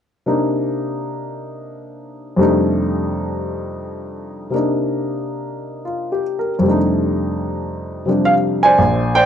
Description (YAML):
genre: solo jazz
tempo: 113 BPM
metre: 4/4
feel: swing 68% on 8ths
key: unclear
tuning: A4 = 438 Hz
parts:
  - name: warm baby grand piano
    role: solo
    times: 0.3-9.3 s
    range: Bb1 to Ab5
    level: -17 LUFS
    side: equal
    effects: none
room: moderate studio reverb, RT60 0.8 s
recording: none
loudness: -16 LUFS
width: side -8 dB against mid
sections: 0.3-8.8 A section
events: none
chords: 0.3 Cm9; 2.4 F13; 4.5 Cm9; 6.7 F13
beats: | 0.26 0.79 1.33 1.86 | 2.39 2.92 3.46 3.99 | 4.52 5.05 5.58 6.12 | 6.65 7.18 7.71 8.25 | 8.78